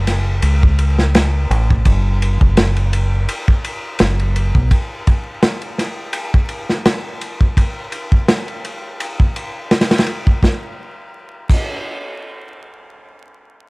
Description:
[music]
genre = trip hop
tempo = 84 BPM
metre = 4/4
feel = swing 55% on 16ths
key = F# minor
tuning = A4 = 441 Hz
[part]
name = deep dub fingered electric bass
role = bass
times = 0.0-4.7 s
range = F#1 to C#2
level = -15 LUFS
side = equal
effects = none
[part]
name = crunchy breakbeat drum kit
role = drums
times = 0.1-11.7 s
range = crash cymbal, kick drum, ride cymbal, snare drum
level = -16 LUFS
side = equal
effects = none
[sound]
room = little or no reverb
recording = vinyl crackle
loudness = -14 LUFS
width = side -30 dB against mid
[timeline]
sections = 0.0-10.4 A section; 10.4-13.3 B section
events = none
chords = none

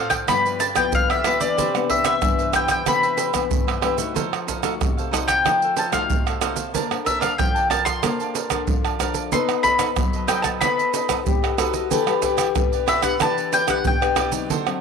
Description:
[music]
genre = samba and choro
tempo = 93 BPM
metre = 4/4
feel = straight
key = unclear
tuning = A4 = 443 Hz
[part]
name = mandolin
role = melody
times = 0.0-14.3 s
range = D5 to C6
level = -21 LUFS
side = left 2 dB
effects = slapback echo
[part]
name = cavaquinho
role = accompaniment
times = 0.0-14.8 s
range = D4 to A5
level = -28 LUFS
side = right 9 dB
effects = none
[part]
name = nylon-string guitar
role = accompaniment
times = 0.0-14.8 s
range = G2 to C5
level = -26 LUFS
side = left 12 dB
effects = none
[part]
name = maracas, surdo, pandeiro and tamborim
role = percussion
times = 0.1-14.8 s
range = none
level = -23 LUFS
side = right 4 dB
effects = none
[part]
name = breathy trombone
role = second line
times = 11.3-12.7 s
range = F#4 to A4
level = -25 LUFS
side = left 10 dB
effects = none
[sound]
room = wet spring reverb, RT60 2.0 s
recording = 1960s-style stereo with parts hard left and right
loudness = -18 LUFS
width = side -6 dB against mid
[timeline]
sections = 0.0-14.8 A section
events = none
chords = 0.3 G6; 1.6 Cmaj9; 4.2 F7b9; 6.7 Bbmaj9; 9.3 B7b9; 11.9 Em7

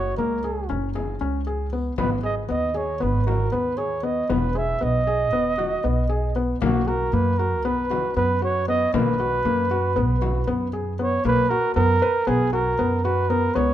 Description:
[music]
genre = contemporary instrumental, chamber music in an uneven meter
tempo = 233 BPM (eighths)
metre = 9/8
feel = straight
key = B major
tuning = A4 = 440 Hz
[part]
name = breathy flugelhorn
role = melody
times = 0.0-13.7 s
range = F#4 to E5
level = -24 LUFS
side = right 3 dB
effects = none
[part]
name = felt-muted upright piano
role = arpeggios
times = 0.0-13.7 s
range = A#3 to B4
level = -25 LUFS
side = left 4 dB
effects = none
[part]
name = upright bass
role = bass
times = 0.0-13.7 s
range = E1 to F#2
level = -25 LUFS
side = right 1 dB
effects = none
[part]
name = frame drum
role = percussion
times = 0.4-11.1 s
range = none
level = -31 LUFS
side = left 6 dB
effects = none
[sound]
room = light reverb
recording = close, detailed microphones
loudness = -20 LUFS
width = side -11 dB against mid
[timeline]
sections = 0.0-11.2 A section; 11.2-13.7 B section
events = none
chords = 0.0 F#add9; 2.0 G#m; 4.3 Emaj7; 6.6 B5

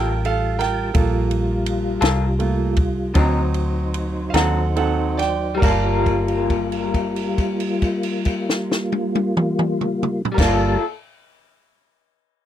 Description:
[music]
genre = slow blues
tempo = 45-58 BPM (dotted quarters)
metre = 12/8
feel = straight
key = G minor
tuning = A4 = 436 Hz
[part]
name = bright grand piano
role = accompaniment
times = 0.0-10.8 s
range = F#3 to A5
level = -25 LUFS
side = right 7 dB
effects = none
[part]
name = electric guitar through a small old amp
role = accompaniment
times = 0.0-10.8 s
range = D3 to A4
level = -24 LUFS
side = left 4 dB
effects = tremolo
[part]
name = mellow tonewheel organ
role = sustained chords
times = 0.0-10.8 s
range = F#3 to A5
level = -24 LUFS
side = left 1 dB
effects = chorus vibrato, slow rotary speaker
[part]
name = vintage muted fingered electric bass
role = bass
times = 0.0-10.7 s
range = G1 to Eb2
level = -22 LUFS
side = equal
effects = none
[part]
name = compact cocktail drum kit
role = drums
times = 0.2-10.6 s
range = crash cymbal, kick drum, ride cymbal, snare drum, toms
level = -22 LUFS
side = equal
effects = none
[sound]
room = little or no reverb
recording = dry, close 1970s-style studio recording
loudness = -18 LUFS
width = side -11 dB against mid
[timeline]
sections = 0.0-5.6 A section; 5.6-10.9 B section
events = slowing down 0.0-5.6; grand piano solo 0.0-5.6; held note 5.6-10.4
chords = 0.0 Gm9; 3.2 D7b9; 5.6 Gm9

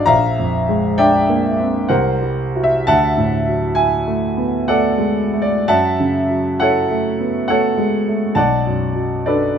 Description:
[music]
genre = classical, impressionist solo piano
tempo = 65 BPM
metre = 3/4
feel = uneven beats, rubato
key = D lydian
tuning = A4 = 441 Hz
[part]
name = clear concert grand piano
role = solo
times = 0.0-9.6 s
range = G#1 to Bb5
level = -14 LUFS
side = equal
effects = none
[sound]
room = light reverb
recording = none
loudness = -14 LUFS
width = side -8 dB against mid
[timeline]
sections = 0.0-9.6 A section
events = none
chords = 0.1 Bb7#11; 1.9 C7#11; 2.9 Dadd9; 5.7 F#m7; 8.4 Bm7

